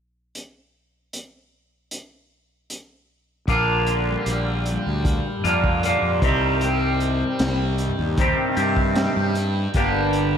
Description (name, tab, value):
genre	psychedelic rock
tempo	76 BPM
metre	4/4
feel	straight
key	unclear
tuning	A4 = 442 Hz
part	crunchy breakbeat drum kit	drums	0.4-10.3 s	hi-hat, kick drum, snare drum	-25 LUFS	equal	none
part	twangy electric guitar	riff	3.5-10.4 s	G2 to G4	-22 LUFS	equal	phaser, double-tracked left and right
part	fuzz fingered electric bass	bass	3.5-10.4 s	G1 to G2	-24 LUFS	equal	overdrive
part	tanpura	drone	3.5-10.4 s	G2 to D4	-29 LUFS	left 2 dB	none
room	moderate lush hall reverb, RT60 2.7 s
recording	dreamy mix soaked in reverb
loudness	-19 LUFS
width	side -8 dB against mid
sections	0.3-3.5 A section; 3.5-10.4 B section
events	none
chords	0.3 N.C.; 3.5 Bb; 6.2 Cm; 9.8 Gm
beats	| 0.34 1.13 1.91 2.70 | 3.48 4.26 5.05 5.83 | 6.62 7.40 8.18 8.97 | 9.75